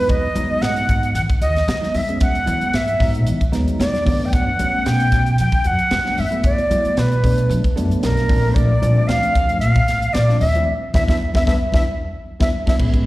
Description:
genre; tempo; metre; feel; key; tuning
electric jazz fusion; 113 BPM; 4/4; swing 53% on 16ths; unclear; A4 = 440 Hz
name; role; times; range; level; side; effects
breathy bright concert flute; melody; 0.0-12.8 s; Bb4 to G5; -21 LUFS; right 1 dB; slapback echo, tape echo
jazz flute; second line; 0.0-12.7 s; Bb4 to G5; -27 LUFS; equal; slapback echo
tine electric piano; accompaniment; 0.0-13.1 s; F3 to E4; -24 LUFS; equal; medium stereo tremolo, analog chorus, slapback echo
upright bass; bass; 0.0-13.1 s; A1 to G3; -20 LUFS; equal; none
crisp fusion drum kit; drums; 0.1-13.1 s; crash cymbal, hi-hat, kick drum, snare drum; -21 LUFS; equal; none
congas; percussion; 0.1-12.9 s; none; -30 LUFS; left 1 dB; slapback echo
room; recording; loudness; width
light reverb, studio ambience; live gig heard through the venue's PA, recital hall reverb; -15 LUFS; side -17 dB against mid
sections
0.0-12.8 A section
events
drum fill 3.7-4.3, 11.7-12.8; band accent 10.7-12.8; tine electric piano fill 11.7-12.8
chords
0.0 Emaj9; 4.1 Gmaj9; 8.3 Bbmaj9; 10.7 E5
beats
| 0.10 0.62 1.15 1.68 | 2.21 2.74 3.27 3.80 | 4.33 4.86 5.39 5.92 | 6.44 6.97 7.50 8.03 | 8.56 9.09 9.62 10.15 | 10.68 11.21 11.74 12.27 | 12.79

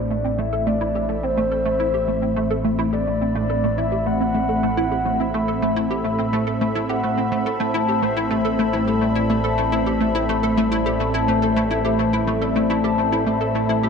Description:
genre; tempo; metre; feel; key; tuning
ambient, sequencer-driven space music; 106 BPM; 4/4; straight; A minor; A4 = 441 Hz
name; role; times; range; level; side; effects
soft octave-layered synth lead; melody; 0.0-7.4 s; C5 to F#5; -25 LUFS; left 2 dB; chorus, ping-pong delay
sweeping resonant pad; sustained chords; 0.0-13.9 s; A2 to B5; -22 LUFS; equal; chorus
concert harp; arpeggios; 0.0-0.7, 7.5-13.9 s; A3 to A5; -24 LUFS; left 6 dB; auto-pan, ping-pong delay
hollow square pluck; riff; 0.0-13.9 s; A3 to A4; -24 LUFS; right 1 dB; ensemble chorus, ping-pong delay
analog drone; bass; 0.0-13.9 s; A1; -28 LUFS; right 1 dB; chorus
room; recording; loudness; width
wet spring reverb, RT60 2.5 s; echo-heavy mix, nothing above 10.6 kHz; -18 LUFS; side -6 dB against mid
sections
0.0-13.9 A section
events
none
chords
0.0 Amadd9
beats
0.10 | 0.67 1.24 1.80 2.37 | 2.93 3.50 4.07 4.63 | 5.20 5.76 6.33 6.90 | 7.46 8.03 8.60 9.16 | 9.73 10.29 10.86 11.43 | 11.99 12.56 13.12 13.69

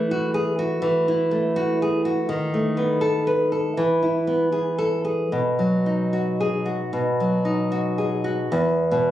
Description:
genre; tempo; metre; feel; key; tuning
romantic piece for solo classical guitar; 72-86 BPM; 4/4; rubato; unclear; A4 = 440 Hz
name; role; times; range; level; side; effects
nylon-string guitar; solo; 0.0-9.1 s; E2 to B4; -20 LUFS; equal; none
room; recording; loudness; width
light reverb; recorded on a phone in the room, club reverb, compression; -20 LUFS; side -12 dB against mid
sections
0.0-8.5 A section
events
none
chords
0.0 F#m7/E; 2.3 B7/D#; 3.8 E; 5.3 B; 8.5 E5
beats
0.12 0.83 1.56 | 2.30 3.03 3.77 4.51 | 5.32 6.14 6.93 7.72 | 8.51

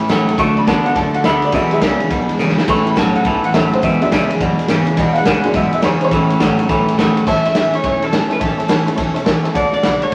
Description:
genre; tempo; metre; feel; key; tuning
rockabilly; 209 BPM; 4/4; swing 65% on 8ths; A major; A4 = 436 Hz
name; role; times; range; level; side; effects
picked steel-string acoustic guitar; accompaniment; 0.0-10.1 s; E2 to F#4; -23 LUFS; equal; none
twangy electric guitar; riff; 0.0-7.2 s; E2 to B3; -19 LUFS; equal; spring reverb
upright bass; bass; 0.0-10.1 s; E1 to B2; -29 LUFS; equal; none
raw garage drum kit; drums; 0.0-10.1 s; crash cymbal, kick drum, ride cymbal, snare drum; -22 LUFS; equal; none
tack piano; accompaniment; 0.4-10.1 s; E3 to C#6; -22 LUFS; equal; none
electric guitar through a small old amp; melody; 7.3-10.1 s; A4 to E5; -20 LUFS; equal; tremolo
room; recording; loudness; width
wet studio reverb, RT60 0.7 s; vinyl crackle; -15 LUFS; mono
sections
0.0-7.3 A section; 7.3-10.1 B section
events
honky-tonk piano solo 0.0-7.3; drum fill 2.4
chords
0.4 D; 1.5 E7; 2.7 A; 3.8 E7; 6.1 A; 9.6 D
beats
0.10 | 0.39 0.67 0.96 1.25 | 1.53 1.82 2.11 2.40 | 2.68 2.97 3.26 3.54 | 3.83 4.12 4.41 4.69 | 4.98 5.26 5.55 5.84 | 6.12 6.41 6.70 6.98 | 7.27 7.56 7.84 8.13 | 8.41 8.70 8.99 9.27 | 9.56 9.85 10.13

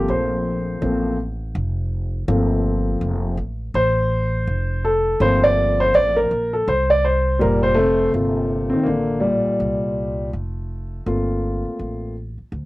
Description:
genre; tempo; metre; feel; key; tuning
hip hop, jazz-hop; 82 BPM; 4/4; swing 60% on 16ths; G minor; A4 = 440 Hz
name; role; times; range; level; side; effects
dark grand piano; accompaniment; 0.0-12.1 s; Bb2 to D5; -18 LUFS; equal; cassette tape
upright bass; bass; 0.0-12.7 s; F1 to D2; -24 LUFS; equal; none
room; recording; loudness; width
moderate booth ambience, RT60 0.1 s; home recording on cassette; -18 LUFS; side -19 dB against mid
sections
0.0-8.1 A section; 8.1-12.7 B section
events
grand piano solo 0.0-8.1, 8.1-12.7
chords
0.0 Gm11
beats
0.09 0.82 1.55 | 2.28 3.01 3.75 4.48 | 5.21 5.94 6.67 7.40 | 8.13 8.87 9.60 10.33 | 11.06 11.79 12.53

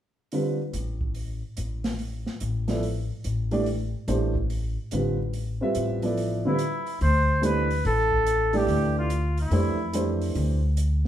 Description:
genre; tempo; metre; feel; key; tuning
modal jazz; 144 BPM; 4/4; swing 65% on 8ths; D dorian; A4 = 442 Hz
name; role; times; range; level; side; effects
warm concert grand piano; accompaniment; 0.3-10.6 s; D3 to E5; -27 LUFS; right 2 dB; none
open jazz drum kit; drums; 0.3-11.1 s; hi-hat, kick drum, snare drum; -36 LUFS; right 1 dB; none
upright bass; bass; 0.7-11.1 s; A1 to F2; -26 LUFS; left 1 dB; none
warm trumpet; melody; 6.5-10.2 s; E4 to C5; -26 LUFS; equal; none
room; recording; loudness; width
wet studio reverb, RT60 0.9 s; heard from further back in the room; -23 LUFS; side -11 dB against mid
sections
0.3-7.0 A section; 7.0-11.1 B section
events
none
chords
0.3 Dm11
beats
| 0.32 0.74 1.16 1.57 | 1.99 2.41 2.83 3.25 | 3.66 4.08 4.50 4.92 | 5.34 5.75 6.17 6.59 | 7.01 7.43 7.84 8.26 | 8.68 9.10 9.52 9.94 | 10.35 10.77

